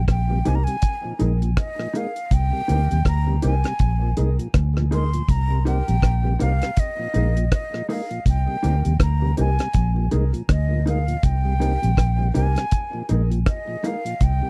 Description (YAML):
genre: roots reggae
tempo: 81 BPM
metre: 4/4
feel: swing 58% on 16ths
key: unclear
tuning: A4 = 440 Hz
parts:
  - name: breathy mellow silver concert flute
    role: melody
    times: 0.0-14.5 s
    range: Eb5 to C6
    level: -31 LUFS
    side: equal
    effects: tape echo
  - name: vintage muted fingered electric bass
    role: bass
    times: 0.0-14.4 s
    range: Bb1 to Eb2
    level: -22 LUFS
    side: equal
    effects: none
  - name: deep reggae drum kit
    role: drums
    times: 0.1-14.4 s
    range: hi-hat, kick drum, rim click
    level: -23 LUFS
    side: equal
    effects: none
  - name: mellow electric guitar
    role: accompaniment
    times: 0.3-14.0 s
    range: Eb4 to Bb4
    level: -33 LUFS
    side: equal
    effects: lush chorus, tape echo
  - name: mellow tonewheel organ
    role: accompaniment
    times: 0.3-14.5 s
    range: Bb2 to Eb4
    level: -33 LUFS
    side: equal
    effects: slow rotary speaker, tape echo
room: little or no reverb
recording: dry, close 1970s-style studio recording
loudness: -21 LUFS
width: mono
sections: 0.0-14.5 A section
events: none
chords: 0.0 Cm7; 0.8 Bb7sus4; 2.3 Cm7; 3.8 Bb7sus4; 5.3 Cm7; 6.8 Bb7sus4; 8.3 Cm7; 9.7 Bb7sus4; 11.2 Cm7; 12.7 Bb7sus4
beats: 0.08 0.83 1.57 | 2.31 3.06 3.80 4.54 | 5.29 6.03 6.77 7.52 | 8.26 9.00 9.75 10.49 | 11.23 11.98 12.72 13.46 | 14.21